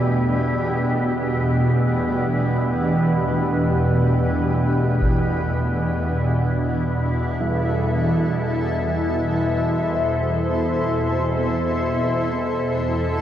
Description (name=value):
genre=dark ambient drone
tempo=free time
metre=none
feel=none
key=unclear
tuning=A4 = 437 Hz
part: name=granular cloud pad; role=sustained chords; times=0.0-13.2 s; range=E3 to C5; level=-22 LUFS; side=left 1 dB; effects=built-in reverb, shimmer reverb
part: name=old church bells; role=arpeggios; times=0.0-13.2 s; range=E3 to D4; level=-31 LUFS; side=right 2 dB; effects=none
part: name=organ-like drone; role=drone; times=0.0-13.2 s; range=E2 to B2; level=-21 LUFS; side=equal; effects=ensemble chorus, built-in reverb
part: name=taiko ensemble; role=percussion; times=5.0-5.3 s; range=none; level=-23 LUFS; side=equal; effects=low-pass filter on perc
room=wet spring reverb, RT60 2.4 s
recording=echo-heavy mix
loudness=-19 LUFS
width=side -11 dB against mid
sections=0.0-13.2 A section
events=fade-out 11.7-13.2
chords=0.0 Em; 5.0 Am/E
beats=free time